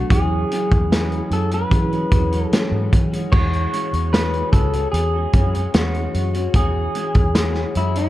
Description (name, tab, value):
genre	indie pop, bedroom pop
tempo	75 BPM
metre	4/4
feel	straight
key	E major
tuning	A4 = 436 Hz
part	electric guitar through a small old amp	melody	0.0-8.1 s	E4 to C#5	-24 LUFS	left 1 dB	wide subtle chorus
part	mellow tine electric piano	accompaniment	0.0-3.4 s	F#3 to G#4	-26 LUFS	right 3 dB	medium stereo tremolo, cassette tape
part	semi-hollow electric guitar	accompaniment	0.0-8.1 s	E3 to F#4	-27 LUFS	left 3 dB	lush chorus, vibrato effect
part	vintage muted fingered electric bass	bass	0.0-8.1 s	C#2 to E3	-22 LUFS	equal	none
part	loose indie drum kit	drums	0.1-8.1 s	crash cymbal, hi-hat, kick drum, snare drum	-19 LUFS	equal	none
room	light reverb, studio reverb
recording	dark, warm production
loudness	-16 LUFS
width	side -15 dB against mid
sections	0.0-3.3 A section; 3.3-8.1 A section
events	none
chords	0.1 E69